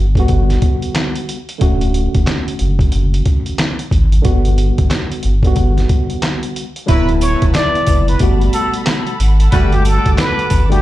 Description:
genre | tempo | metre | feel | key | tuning
hip hop, boom-bap hip-hop | 91 BPM | 4/4 | swing 61% on 16ths | unclear | A4 = 440 Hz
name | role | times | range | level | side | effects
tine electric piano | accompaniment | 0.0-10.8 s | B2 to F#4 | -20 LUFS | equal | overdrive, fast stereo tremolo, high-pass filter, low-pass filter
sub bass with octave | bass | 0.0-10.8 s | D1 to G#1 | -14 LUFS | equal | none
trip hop sampler-style drum kit | drums | 0.2-10.8 s | handclaps, hi-hat, kick drum, snare drum | -16 LUFS | equal | vintage 12-bit sampler grit
warm studio string section | sustained chords | 6.9-10.8 s | A4 to D6 | -28 LUFS | right 1 dB | high-pass filter, low-pass filter
clear horn section | stabs | 6.9-9.7 s | F#3 to B4 | -25 LUFS | left 2 dB | high-pass filter, low-pass filter, ping-pong delay
sleigh bells | percussion | 6.9-10.7 s | none | -32 LUFS | right 7 dB | none
trumpet with plunger mute | melody | 7.2-10.8 s | G4 to D5 | -19 LUFS | left 1 dB | high-pass filter, low-pass filter, ping-pong delay
room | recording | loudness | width
little or no reverb | played on a big sound system in a bare room, large studio reverb | -12 LUFS | side -15 dB against mid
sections
0.0-6.9 A section; 6.9-10.8 B section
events
none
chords
0.0 Gmaj7; 1.6 Dmaj7; 4.2 Gmaj7; 6.9 D69; 8.2 Gmaj9

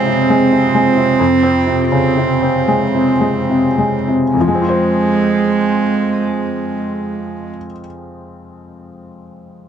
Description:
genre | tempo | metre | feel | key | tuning
neoclassical piano and strings | 34-45 BPM (dotted quarters) | 6/8 | rubato | F minor | A4 = 439 Hz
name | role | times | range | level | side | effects
rich cello | second line | 0.0-7.5 s | Ab3 to C4 | -16 LUFS | right 6 dB | none
felt-muted upright piano | accompaniment | 0.0-9.7 s | F2 to C5 | -16 LUFS | left 2 dB | none
warbly tape-like pad | sustained chords | 0.0-7.5 s | C4 to C5 | -25 LUFS | right 1 dB | chorus, built-in reverb
room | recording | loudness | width
light reverb | dark, warm production | -12 LUFS | side -8 dB against mid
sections
0.0-4.3 A section; 4.3-7.8 B section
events
slowing down 0.0-4.3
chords
0.0 Dbmaj7/F; 4.3 Fm

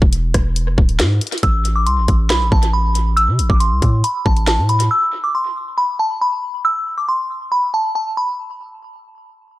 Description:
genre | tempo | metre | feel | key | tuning
hip hop, drill | 138 BPM | 4/4 | half-time | A harmonic minor | A4 = 441 Hz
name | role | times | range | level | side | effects
long sustained 808-style bass | bass | 0.0-4.9 s | D1 to C3 | -16 LUFS | equal | none
drill drum kit | drums | 0.0-4.9 s | hi-hat, kick drum, rim click, snare drum | -17 LUFS | equal | vintage 12-bit sampler grit, tape echo
delicate synth tine bell | melody | 1.4-8.3 s | A5 to E6 | -18 LUFS | equal | chorus, low-pass filter, tape echo
room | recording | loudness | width
little or no reverb | echo-heavy mix | -14 LUFS | side -16 dB against mid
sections
0.0-1.4 A section; 1.4-8.4 B section; 8.4-9.6 C section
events
break 0.0-1.4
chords
0.0 E5; 1.4 Asus2; 4.9 N.C.

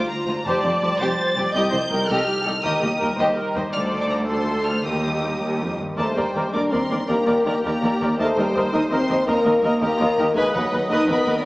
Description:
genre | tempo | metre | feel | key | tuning
cinematic, heroic adventure film score | 110 BPM (dotted quarters) | 6/8 | straight | Eb lydian | A4 = 440 Hz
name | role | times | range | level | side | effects
rich symphonic violin section | melody | 0.0-11.4 s | F#5 to A6 | -29 LUFS | equal | none
clear symphonic violin section | second line | 0.0-11.5 s | F4 to Eb5 | -27 LUFS | equal | none
rich symphonic viola section | accompaniment | 0.0-11.4 s | F4 to Eb5 | -25 LUFS | equal | none
concert harp | arpeggios | 0.0-11.5 s | C3 to C5 | -33 LUFS | left 2 dB | none
clear symphonic double bass section | bass | 0.3-11.3 s | F1 to Eb2 | -30 LUFS | right 1 dB | none
rich symphonic cello section | bass | 0.3-11.3 s | C2 to G2 | -28 LUFS | right 1 dB | none
dark French horn section | sustained chords | 6.0-11.4 s | F#3 to Eb4 | -21 LUFS | left 1 dB | none
room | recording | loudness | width
wet concert hall reverb, RT60 2.4 s | small speaker sound | -19 LUFS | side -21 dB against mid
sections
0.0-6.0 A section; 6.0-11.5 B section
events
none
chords
0.5 Fadd9; 1.5 Cm; 2.6 Eb; 3.7 Dm7; 4.8 Eb; 6.0 Gm/Eb; 8.2 Eb; 10.4 B/D#

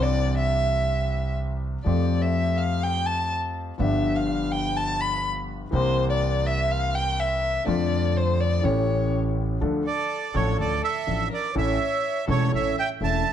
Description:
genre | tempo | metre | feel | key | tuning
tango | 124 BPM | 4/4 | rubato | F major, D harmonic minor from 9.6 s | A4 = 441 Hz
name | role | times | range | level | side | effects
warm violin | second line | 0.0-13.3 s | A4 to B5 | -27 LUFS | left 1 dB | none
clear concert grand piano | accompaniment | 0.0-13.2 s | E1 to A4 | -27 LUFS | left 3 dB | none
upright bass | bass | 0.0-13.2 s | E1 to F2 | -27 LUFS | right 2 dB | none
bandoneon | melody | 9.9-13.3 s | C#5 to A5 | -26 LUFS | right 7 dB | none
room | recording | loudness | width
moderate large studio reverb, RT60 1.2 s | dark, warm production | -22 LUFS | side -9 dB against mid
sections
0.0-9.6 A section; 9.6-13.3 B section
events
violin solo 0.0-9.6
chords
0.0 Cadd9; 1.9 Fadd9; 3.8 G7; 5.7 C7; 7.7 F6; 8.6 A7; 9.6 Dm; 11.6 A

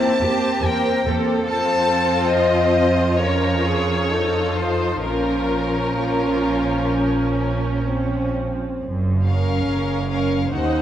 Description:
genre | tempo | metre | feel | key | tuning
classical, slow romantic movement for string orchestra | 62-72 BPM | 4/4 | rubato | Bb minor | A4 = 443 Hz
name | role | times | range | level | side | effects
rich chamber violin section | melody | 0.0-10.8 s | Bb4 to A5 | -24 LUFS | left 4 dB | none
rich chamber violin section | second line | 0.0-10.8 s | C4 to C5 | -24 LUFS | left 3 dB | none
rich chamber viola section | accompaniment | 0.0-10.8 s | F3 to Eb4 | -23 LUFS | right 2 dB | none
rich studio cello section | bass | 0.0-10.8 s | Eb2 to Bb4 | -27 LUFS | right 2 dB | none
rich chamber double bass section | bass | 0.2-10.8 s | Gb1 to F2 | -24 LUFS | right 2 dB | none
room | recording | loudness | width
moderate concert hall reverb, RT60 2.0 s | none | -18 LUFS | side -11 dB against mid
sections
0.0-8.8 A section; 8.8-10.8 B section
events
none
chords
0.0 C7/E; 1.5 F; 3.2 Bbm/F; 4.1 F7; 5.0 Bbm; 8.8 Gbmaj7

